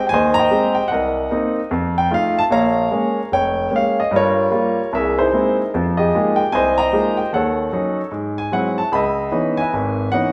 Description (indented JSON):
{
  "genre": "solo jazz",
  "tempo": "150 BPM",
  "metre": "4/4",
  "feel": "swing 64% on 8ths",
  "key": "unclear",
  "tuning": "A4 = 439 Hz",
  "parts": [
    { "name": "clear concert grand piano", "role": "solo", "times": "0.0-10.3 s", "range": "F1 to Cb6", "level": "-18 LUFS", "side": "equal", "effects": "none" }
  ],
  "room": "wet stone room reverb, RT60 1.3 s",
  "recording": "band playing live in one room",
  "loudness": "-18 LUFS",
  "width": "mono",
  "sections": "0.0-2.5 A section; 2.5-10.3 A section",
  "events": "none",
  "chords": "0.0 Abmaj7; 0.9 Cm7b5; 1.7 F7; 2.5 Bbm7; 4.1 Gm7b5; 4.9 C7alt; 5.7 Fm11; 7.3 Ebm7b5; 8.1 Abaug7; 8.9 Dbm9"
}